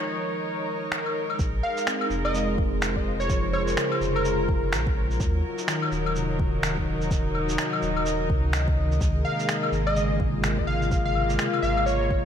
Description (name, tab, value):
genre	future garage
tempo	126 BPM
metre	4/4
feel	swing 60% on 16ths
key	Bb minor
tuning	A4 = 439 Hz
part	bell-like tine electric piano	accompaniment	0.0-12.2 s	C3 to Eb4	-32 LUFS	right 1 dB	ensemble chorus, sidechain pumping, diffuse ambient delay
part	dark studio string section	sustained chords	0.0-12.2 s	Gb3 to Eb5	-28 LUFS	left 1 dB	sidechain pumping
part	electronic finger snaps, claves and shaker	drums	0.9-12.0 s	none	-30 LUFS	left 1 dB	none
part	warm sub bass	bass	1.4-12.2 s	Eb1 to Eb2	-28 LUFS	equal	sidechain pumping
part	electronic kick drum	drums	1.4-12.2 s	none	-27 LUFS	equal	none
part	plucky unison lead	melody	1.6-4.8, 9.2-12.2 s	Bb4 to F5	-29 LUFS	equal	cassette tape, ping-pong delay
room	moderate lush hall reverb, RT60 1.8 s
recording	dreamy mix soaked in reverb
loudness	-22 LUFS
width	side -8 dB against mid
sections	0.0-1.4 A section; 1.4-12.2 B section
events	none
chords	0.0 Eb5; 1.4 Bbm9; 5.2 Ebm7; 9.0 Bbm9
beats	0.44 0.92 | 1.39 1.87 2.34 2.82 | 3.30 3.77 4.25 4.72 | 5.20 5.68 6.15 6.63 | 7.11 7.58 8.06 8.54 | 9.01 9.49 9.96 10.44 | 10.92 11.39 11.87